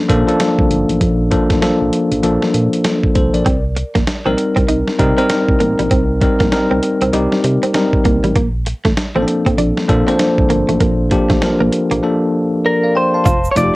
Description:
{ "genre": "R&B, new jack swing", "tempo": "98 BPM", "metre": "4/4", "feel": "swing 61% on 16ths", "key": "unclear", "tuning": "A4 = 439 Hz", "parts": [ { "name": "bell-like tine electric piano", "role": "accompaniment", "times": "0.0-13.8 s", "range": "F3 to A5", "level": "-15 LUFS", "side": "left 1 dB", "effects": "medium stereo tremolo, cassette tape" }, { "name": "solid FM bass", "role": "bass", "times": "0.1-13.7 s", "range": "F1 to C3", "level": "-19 LUFS", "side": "equal", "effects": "none" }, { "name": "dusty soul sampler-style drum kit", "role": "drums", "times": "0.1-13.7 s", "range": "hi-hat, kick drum, snare drum", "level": "-18 LUFS", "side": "equal", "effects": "cassette tape" }, { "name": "direct-recorded clean electric guitar", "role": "riff", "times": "3.5-13.6 s", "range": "G3 to F4", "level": "-19 LUFS", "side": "right 3 dB", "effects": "wide subtle chorus, cassette tape" }, { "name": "clean electric guitar", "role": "melody", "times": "12.7-13.8 s", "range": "Bb4 to D5", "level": "-14 LUFS", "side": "equal", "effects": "cassette tape" }, { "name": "tube shaker", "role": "percussion", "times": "13.3-13.7 s", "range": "none", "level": "-34 LUFS", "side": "right 4 dB", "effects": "none" } ], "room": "light reverb", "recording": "home recording on cassette", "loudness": "-12 LUFS", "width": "side -20 dB against mid", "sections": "0.0-13.3 A section", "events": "silent gap 12.0-13.3", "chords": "0.0 Bbmaj7; 3.5 Cm7; 8.4 Bbmaj7; 13.3 F9", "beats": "0.40 | 1.01 1.62 2.24 2.85 | 3.46 4.07 4.69 5.30 | 5.91 6.52 7.13 7.75 | 8.36 8.97 9.58 10.20 | 10.81 11.42 12.03 12.64 | 13.26" }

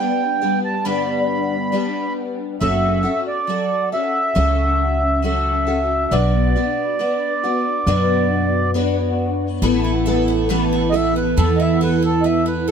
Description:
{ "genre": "acoustic folk duo or small band", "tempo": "68 BPM", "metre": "4/4", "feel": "straight", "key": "A mixolydian", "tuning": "A4 = 440 Hz", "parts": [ { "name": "mellow accordion", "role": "melody", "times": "0.0-12.7 s", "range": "A4 to B5", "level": "-21 LUFS", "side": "right 2 dB", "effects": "none" }, { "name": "picked twelve-string acoustic guitar", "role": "accompaniment", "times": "0.0-12.7 s", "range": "G2 to C#5", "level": "-21 LUFS", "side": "left 3 dB", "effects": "ensemble chorus" }, { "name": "upright bass", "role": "bass", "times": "2.6-12.7 s", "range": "F#1 to F#2", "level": "-21 LUFS", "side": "equal", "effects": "none" }, { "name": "picked twelve-string acoustic guitar", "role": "arpeggios", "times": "9.6-12.7 s", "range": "E3 to A4", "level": "-19 LUFS", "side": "right 6 dB", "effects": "lush chorus" } ], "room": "light reverb", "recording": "none", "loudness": "-16 LUFS", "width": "side -7 dB against mid", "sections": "0.0-9.6 A section; 9.6-12.7 B section", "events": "accordion solo 9.6-12.7", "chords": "0.0 G; 2.6 F#m; 6.1 Bmadd9; 9.6 Asus2", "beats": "0.85 1.73 | 2.61 3.49 4.37 5.24 | 6.12 7.00 7.88 8.75 | 9.63 10.50 11.38 12.25" }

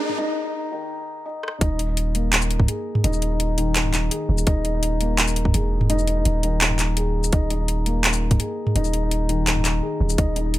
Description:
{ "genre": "half-time drum and bass", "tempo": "168 BPM", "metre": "4/4", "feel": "half-time", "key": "unclear", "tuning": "A4 = 438 Hz", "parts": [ { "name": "felt-muted upright piano", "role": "arpeggios", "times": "0.0-10.6 s", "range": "Eb3 to Ab4", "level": "-26 LUFS", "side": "left 2 dB", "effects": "vintage 12-bit sampler grit, ping-pong delay" }, { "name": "drum and bass drum kit", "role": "drums", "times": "0.1-10.6 s", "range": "handclaps, hi-hat, rim click, shaker, toms", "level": "-22 LUFS", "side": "equal", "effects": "overdrive" }, { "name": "long sustained 808-style bass", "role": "bass", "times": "1.6-10.6 s", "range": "Eb1 to Fb1", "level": "-22 LUFS", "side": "equal", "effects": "none" }, { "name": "electronic kick drum", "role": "drums", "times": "1.6-10.3 s", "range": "none", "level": "-20 LUFS", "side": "equal", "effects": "overdrive, high-pass filter on kick" } ], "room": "little or no reverb", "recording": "high-pass filter", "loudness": "-19 LUFS", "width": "side -15 dB against mid", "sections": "0.0-1.6 A section; 1.6-10.6 B section", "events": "build-up 0.0-1.6; break 0.2-1.6; drum fill 1.4; drop 1.6-10.6", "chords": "0.0 Eb5", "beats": "| 0.18 0.54 0.90 1.26 | 1.61 1.97 2.33 2.69 | 3.04 3.40 3.76 4.11 | 4.47 4.83 5.18 5.54 | 5.90 6.26 6.61 6.97 | 7.33 7.68 8.04 8.40 | 8.76 9.11 9.47 9.83 | 10.19 10.54" }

